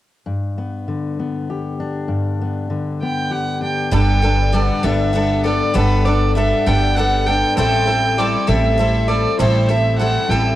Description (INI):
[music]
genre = folk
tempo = 66 BPM (dotted quarters)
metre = 6/8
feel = straight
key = G major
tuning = A4 = 445 Hz
[part]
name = fingerpicked steel-string acoustic guitar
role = accompaniment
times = 0.3-5.7 s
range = G2 to G4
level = -23 LUFS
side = left 2 dB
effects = cassette tape
[part]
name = warm fiddle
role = melody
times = 3.0-10.6 s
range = B4 to G5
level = -19 LUFS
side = right 2 dB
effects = cassette tape
[part]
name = clear upright piano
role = accompaniment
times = 3.9-10.6 s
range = G1 to A4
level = -25 LUFS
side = right 6 dB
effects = cassette tape
[part]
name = picked twelve-string acoustic guitar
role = accompaniment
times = 3.9-10.6 s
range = A2 to A4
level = -20 LUFS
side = left 6 dB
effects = cassette tape
[part]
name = upright bass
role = bass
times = 3.9-10.6 s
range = G1 to A1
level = -18 LUFS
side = right 1 dB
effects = none
[sound]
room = light reverb, studio reverb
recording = home recording on cassette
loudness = -15 LUFS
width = side -14 dB against mid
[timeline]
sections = 0.3-3.9 A section; 3.9-10.6 B section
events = none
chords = 0.3 G; 3.9 Gadd9; 7.6 Am7